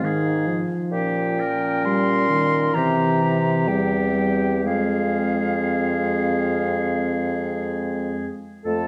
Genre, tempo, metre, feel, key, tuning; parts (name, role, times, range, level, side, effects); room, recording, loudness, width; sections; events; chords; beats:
classical, slow romantic movement for wind quintet; 59-68 BPM; 4/4; rubato; F minor; A4 = 439 Hz
silver concert flute; melody; 0.0-8.9 s; F5 to C6; -29 LUFS; equal
clear oboe; second line; 0.0-8.9 s; G4 to Bb4; -31 LUFS; equal
warm French horn; accompaniment; 0.0-8.9 s; Eb3 to A3; -27 LUFS; equal
warm clarinet; accompaniment; 0.0-8.9 s; C4 to A4; -30 LUFS; equal
warm bassoon; bass; 0.0-8.9 s; E2 to C3; -28 LUFS; equal
wet concert hall reverb, RT60 1.8 s; dark, warm production; -22 LUFS; mono
0.0-8.7 A section
0.0 Fm/Ab; 0.9 Gm7b5/Bb; 2.8 C7; 4.7 Fm
0.02 | 0.91 1.85 2.75 3.68 | 4.66 5.67 6.68 7.68 | 8.67